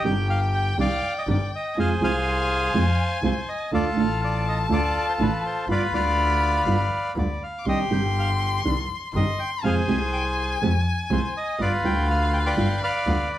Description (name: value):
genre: tango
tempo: 122 BPM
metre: 4/4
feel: rubato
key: C harmonic minor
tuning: A4 = 440 Hz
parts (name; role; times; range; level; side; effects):
- bandoneon; melody; 0.0-13.4 s; F4 to Ab5; -25 LUFS; equal; none
- warm violin; second line; 0.0-13.4 s; F5 to D6; -30 LUFS; left 4 dB; none
- nylon-string guitar; accompaniment; 0.0-13.2 s; C3 to G4; -25 LUFS; right 3 dB; none
- clear double bass; bass; 0.0-13.3 s; G1 to F2; -25 LUFS; equal; none
room: moderate club reverb, RT60 0.5 s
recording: heard from further back in the room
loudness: -21 LUFS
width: side -13 dB against mid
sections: 0.0-13.4 A section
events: none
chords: 0.0 Cmadd9; 1.8 Fm; 3.7 Dm; 5.7 G7; 7.7 Cmadd9; 9.6 Fmadd9; 11.6 G7